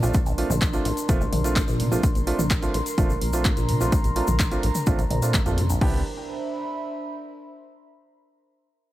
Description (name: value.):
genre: acid house.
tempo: 127 BPM.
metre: 4/4.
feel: straight.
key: C mixolydian.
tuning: A4 = 441 Hz.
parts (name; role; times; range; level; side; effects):
liquid acid bass; riff; 0.0-6.0 s; A1 to D3; -28 LUFS; equal; phaser, analog chorus, tape echo.
warm grand piano; stabs; 0.0-6.0 s; A3 to G4; -30 LUFS; right 3 dB; low-pass filter, tape echo.
saturated sub bass; bass; 0.0-6.0 s; F1 to Bb2; -27 LUFS; equal; tube saturation, sidechain pumping.
egg shaker; percussion; 0.0-5.8 s; none; -36 LUFS; left 3 dB; none.
warbly tape-like pad; texture; 0.0-7.7 s; D4 to C6; -31 LUFS; right 1 dB; chorus, built-in reverb, sidechain pumping.
electronic kick drum; drums; 0.1-5.9 s; none; -23 LUFS; equal; none.
punchy analog drum machine; drums; 0.1-5.9 s; crash cymbal, handclaps, hi-hat, toms; -30 LUFS; left 1 dB; overdrive.
room: light reverb, digital ambience.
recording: none.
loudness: -21 LUFS.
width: side -15 dB against mid.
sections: 0.0-5.8 A section; 5.8-7.7 B section.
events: filter sweep on acid bass 0.0-5.8.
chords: 0.0 Bbmaj9; 5.8 Cmaj9.